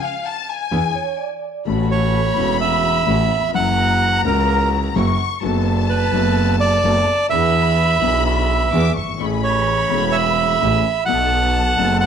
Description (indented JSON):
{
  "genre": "tango",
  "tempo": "127 BPM",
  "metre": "4/4",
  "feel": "rubato",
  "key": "A major",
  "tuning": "A4 = 440 Hz",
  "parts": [
    { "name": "warm studio violin section", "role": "second line", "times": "0.0-12.1 s", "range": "E#5 to D6", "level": "-24 LUFS", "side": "left 10 dB", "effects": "none" },
    { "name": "warm concert grand piano", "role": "accompaniment", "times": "0.7-12.1 s", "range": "E1 to A4", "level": "-23 LUFS", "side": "left 10 dB", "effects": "none" },
    { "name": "dark chamber string section", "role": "stabs", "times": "0.7-12.1 s", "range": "A3 to A#4", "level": "-30 LUFS", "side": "right 12 dB", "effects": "none" },
    { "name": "clear double bass", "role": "bass", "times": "0.7-12.1 s", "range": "E1 to E2", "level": "-20 LUFS", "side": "right 2 dB", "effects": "none" },
    { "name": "vibraphone with medium mallets", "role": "second line", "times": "0.9-1.6 s", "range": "C#5 to D5", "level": "-27 LUFS", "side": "right 10 dB", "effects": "none" },
    { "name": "bandoneon", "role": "melody", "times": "1.9-12.1 s", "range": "A#4 to F#5", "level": "-18 LUFS", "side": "right 4 dB", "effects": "none" }
  ],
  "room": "light reverb, small room reverb",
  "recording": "1960s-style stereo with parts hard left and right",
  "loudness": "-15 LUFS",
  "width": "side -7 dB against mid",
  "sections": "0.0-1.7 A section; 1.7-12.1 B section",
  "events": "violin section solo 0.0-1.7",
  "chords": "0.0 C# (rootless); 0.7 E7; 1.7 A6; 3.5 F#7; 5.4 Bm7/F#; 7.3 E7; 9.2 Amaj7; 11.1 B7",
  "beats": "0.25 0.72 1.20 | 1.67 2.14 2.61 3.08 | 3.55 4.02 4.49 4.96 | 5.42 5.89 6.36 6.83 | 7.31 7.78 8.25 8.72 | 9.20 9.67 10.14 10.62 | 11.09 11.56 12.03"
}